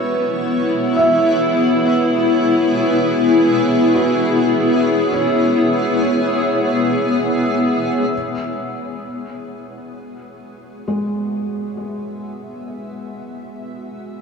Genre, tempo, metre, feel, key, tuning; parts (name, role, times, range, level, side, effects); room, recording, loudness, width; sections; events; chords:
ambient; free time; A4 = 439 Hz
granular cloud pad; sustained chords; 0.0-14.2 s; B3 to E5; -18 LUFS; left 1 dB; built-in reverb
felt-muted upright piano; arpeggios; 0.0-14.2 s; G#3 to E5; -23 LUFS; right 1 dB; lush chorus, analog delay
analog drone; drone; 0.0-14.2 s; B3 to B4; -25 LUFS; equal; chorus
glass harmonica; texture; 0.0-8.1 s; E5 to E6; -27 LUFS; equal
wet cathedral reverb, RT60 6.3 s; dreamy mix soaked in reverb, studio ambience; -14 LUFS; side -5 dB against mid
0.0-8.1 A section; 8.1-14.2 B section
0.0 C#m7